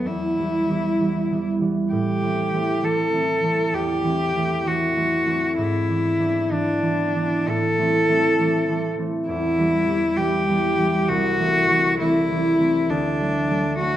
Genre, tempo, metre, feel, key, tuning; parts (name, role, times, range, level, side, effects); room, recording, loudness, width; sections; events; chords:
classical, romantic duo for cello and harp; 66 BPM; 4/4; rubato; A4 = 441 Hz
rich cello; melody; 0.0-14.0 s; D4 to A4; -22 LUFS; left 1 dB
concert harp; accompaniment; 0.0-14.0 s; C2 to D4; -22 LUFS; right 1 dB
wet recital hall reverb, RT60 1.3 s; dark, warm production; -19 LUFS; side -12 dB against mid
0.0-14.0 A section
0.1 Em; 1.9 Am7; 5.6 E7/G#; 7.5 Am; 9.3 Em; 11.1 Am/C; 12.9 D